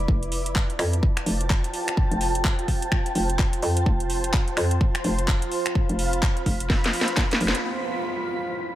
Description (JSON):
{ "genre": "bass house", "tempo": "127 BPM", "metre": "4/4", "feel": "swing 60% on 16ths", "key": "unclear", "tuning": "A4 = 440 Hz", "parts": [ { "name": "hollow knocking FM bass", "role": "bass", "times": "0.0-7.5 s", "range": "F1 to F2", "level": "-25 LUFS", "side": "equal", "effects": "tube saturation, sidechain pumping" }, { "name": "granular cloud pad", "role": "texture", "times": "0.0-8.8 s", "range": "E4 to B5", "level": "-28 LUFS", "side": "right 1 dB", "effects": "built-in reverb, sidechain pumping" }, { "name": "electronic kick drum", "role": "drums", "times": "0.1-7.3 s", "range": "none", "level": "-22 LUFS", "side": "equal", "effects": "none" }, { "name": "garage drum kit", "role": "drums", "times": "0.2-7.6 s", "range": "finger snaps, handclaps, hi-hat, snare drum", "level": "-27 LUFS", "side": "equal", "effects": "none" }, { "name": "dark analog pad", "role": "sustained chords", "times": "7.6-8.8 s", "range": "G3 to D4", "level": "-54 LUFS", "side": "equal", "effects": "none" }, { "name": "downlifter", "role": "sound effects", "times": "7.6-8.8 s", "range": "none", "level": "-32 LUFS", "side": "right 1 dB", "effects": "none" } ], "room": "light reverb", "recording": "none", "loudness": "-21 LUFS", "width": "side -13 dB against mid", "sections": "0.0-7.6 A section; 7.6-8.8 B section", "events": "drum fill 6.7-7.6; band accent 7.5", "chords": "0.1 F; 7.6 Em7", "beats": "| 0.08 0.56 1.03 1.50 | 1.97 2.45 2.92 3.39 | 3.86 4.34 4.81 5.28 | 5.75 6.23 6.70 7.17 | 7.64 8.12 8.59" }